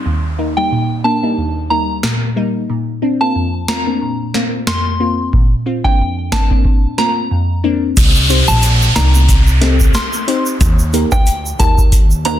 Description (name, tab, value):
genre	dancehall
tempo	91 BPM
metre	4/4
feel	swing 56% on 16ths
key	Bb major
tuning	A4 = 440 Hz
part	downlifter	sound effects	0.0-2.7, 8.0-12.4 s	none	-21 LUFS	equal	none
part	glassy wavetable pluck	accompaniment	0.1-12.4 s	Eb2 to D5	-18 LUFS	left 1 dB	chorus
part	soft synth bell	melody	0.6-12.4 s	G5 to C6	-20 LUFS	equal	chorus, digital delay
part	booming analog drum machine	drums	2.0-12.4 s	crash cymbal, hi-hat, kick drum, rim click, snare drum	-14 LUFS	equal	overdrive
part	upright bass	bass	8.0-12.4 s	Bb1 to Eb2	-14 LUFS	equal	none
part	egg shaker and timbales	percussion	8.0-12.4 s	none	-25 LUFS	right 7 dB	none
room	digital ambience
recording	dense, heavily limited modern master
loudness	-12 LUFS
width	side -12 dB against mid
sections	0.0-8.0 A section; 8.0-12.4 B section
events	none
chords	0.1 Eb; 2.7 Bbsus2; 8.0 Cm; 10.6 Eb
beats	| 0.06 0.71 1.38 2.03 | 2.69 3.35 4.01 4.67 | 5.33 5.99 6.65 7.31 | 7.97 8.63 9.29 9.95 | 10.61 11.27 11.92